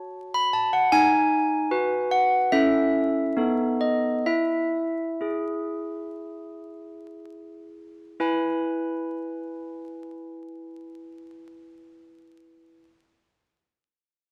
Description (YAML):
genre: classical, tune for handbells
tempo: 57-78 BPM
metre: 4/4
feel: straight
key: E major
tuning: A4 = 440 Hz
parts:
  - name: handbells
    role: solo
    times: 0.0-12.8 s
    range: B3 to B5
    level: -26 LUFS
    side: equal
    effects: none
room: moderate scoring stage reverb, RT60 1.8 s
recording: close, detailed microphones, vinyl crackle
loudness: -24 LUFS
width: mono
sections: 0.0-8.2 A section; 8.2-12.4 B section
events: slowing down 0.0-8.2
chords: 0.0 F#m; 0.9 B/D#; 2.5 A/C#; 3.4 B7; 4.3 E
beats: 0.15 | 0.92 1.71 2.52 3.37 | 4.27 5.20 6.16 7.15 | 8.20 9.24 10.28 11.31